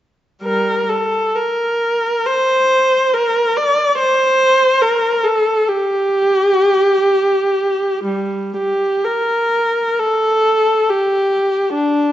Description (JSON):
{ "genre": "classical, free, expressive piece for unaccompanied viola", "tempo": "35-73 BPM", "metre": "4/4", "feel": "rubato", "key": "G minor", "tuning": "A4 = 440 Hz", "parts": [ { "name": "warm viola", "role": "solo", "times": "0.4-12.1 s", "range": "G3 to D5", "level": "-13 LUFS", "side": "equal", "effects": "none" } ], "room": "light reverb", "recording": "nothing above 7.7 kHz", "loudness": "-13 LUFS", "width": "side -12 dB against mid", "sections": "0.4-8.0 A section; 8.0-12.1 B section", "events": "none", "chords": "none" }